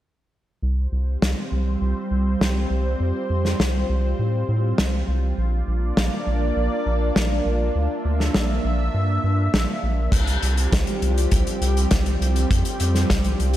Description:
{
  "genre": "synthwave",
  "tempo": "101 BPM",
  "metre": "4/4",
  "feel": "straight",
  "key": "unclear",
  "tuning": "A4 = 439 Hz",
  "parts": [
    { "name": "lush unison pad", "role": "sustained chords", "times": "1.1-13.6 s", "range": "F3 to E5", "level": "-26 LUFS", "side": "equal", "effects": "chorus, phaser, sidechain pumping" },
    { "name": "round analog bass", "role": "bass", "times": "0.6-13.6 s", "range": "Bb1 to A2", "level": "-22 LUFS", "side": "equal", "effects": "none" },
    { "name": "loose indie drum kit", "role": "drums", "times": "1.2-13.6 s", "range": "crash cymbal, hi-hat, snare drum", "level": "-25 LUFS", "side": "equal", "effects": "slapback echo" },
    { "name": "kick drum", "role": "drums", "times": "10.1-13.2 s", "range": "none", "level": "-22 LUFS", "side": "equal", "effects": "none" }
  ],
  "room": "moderate concert hall reverb, RT60 1.8 s, small room ambience",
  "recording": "big arena sound",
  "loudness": "-19 LUFS",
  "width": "side -13 dB against mid",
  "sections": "0.6-10.1 A section; 10.1-13.6 B section",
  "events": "filter sweep on analog synth bass 0.6-10.1",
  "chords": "0.6 Csus4; 5.4 Bb; 10.1 Csus4",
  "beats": "| 0.63 1.22 1.81 2.41 | 3.00 3.60 4.19 4.79 | 5.38 5.97 6.57 7.16 | 7.75 8.35 8.94 9.54 | 10.13 10.72 11.32 11.91 | 12.51 13.10"
}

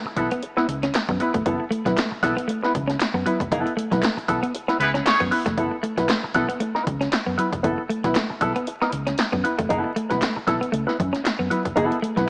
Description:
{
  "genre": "funk",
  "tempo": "116 BPM",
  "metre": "4/4",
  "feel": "swing 56% on 16ths",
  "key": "F# minor",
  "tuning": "A4 = 440 Hz",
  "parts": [
    { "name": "clean electric guitar", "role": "riff", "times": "0.0-12.3 s", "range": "F#3 to C#4", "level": "-30 LUFS", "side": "equal", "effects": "none" },
    { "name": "hollow-body jazz guitar", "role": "accompaniment", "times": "0.1-12.3 s", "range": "B3 to B4", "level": "-26 LUFS", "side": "equal", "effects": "wah" },
    { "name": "vintage muted fingered electric bass", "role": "bass", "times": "0.1-12.3 s", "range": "E#1 to F#2", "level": "-32 LUFS", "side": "equal", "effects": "none" },
    { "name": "punchy analog drum machine", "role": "drums", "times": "0.2-12.3 s", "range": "hi-hat, kick drum, snare drum", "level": "-29 LUFS", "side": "equal", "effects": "none" },
    { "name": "group handclap", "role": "percussion", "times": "0.9-11.4 s", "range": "none", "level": "-34 LUFS", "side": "equal", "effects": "none" },
    { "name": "clear horn section", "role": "second line", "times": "4.8-5.2 s", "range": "G#3 to C#5", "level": "-24 LUFS", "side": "equal", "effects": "none" }
  ],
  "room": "moderate echo chamber reverb, RT60 1.6 s",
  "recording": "vinyl crackle, small speaker sound",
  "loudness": "-23 LUFS",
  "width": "mono",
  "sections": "0.0-12.3 A section",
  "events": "band accent 3.5-5.6",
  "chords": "0.0 F#m11",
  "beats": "0.43 0.94 | 1.46 1.97 2.48 3.00 | 3.51 4.03 4.54 5.06 | 5.58 6.09 6.61 7.12 | 7.64 8.15 8.67 9.19 | 9.70 10.22 10.74 11.26 | 11.77 12.29"
}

